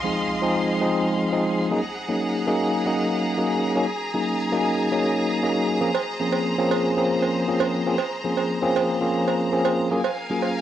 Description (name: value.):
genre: nu-disco, nu disco.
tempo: 117 BPM.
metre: 4/4.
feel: straight.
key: Bb minor.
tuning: A4 = 440 Hz.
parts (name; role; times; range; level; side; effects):
tine electric piano; accompaniment; 0.0-10.6 s; F3 to Ab4; -22 LUFS; equal; medium stereo tremolo, vintage 12-bit sampler grit, cassette tape, analog delay.
bright studio violin section; sustained chords; 0.0-10.6 s; Ab4 to C6; -28 LUFS; equal; cassette tape.
electronic hi-hat and shaker; drums; 0.1-10.6 s; none; barely audible; none; none.
cowbell; percussion; 5.9-10.5 s; none; -26 LUFS; right 8 dB; none.
room: wet studio reverb, RT60 0.5 s.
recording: home recording on cassette.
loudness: -20 LUFS.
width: side -11 dB against mid.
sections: 0.0-10.6 A section.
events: none.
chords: 0.0 Fm7; 1.7 Ab9sus4; 5.8 Bbm9; 9.9 Gbmaj9.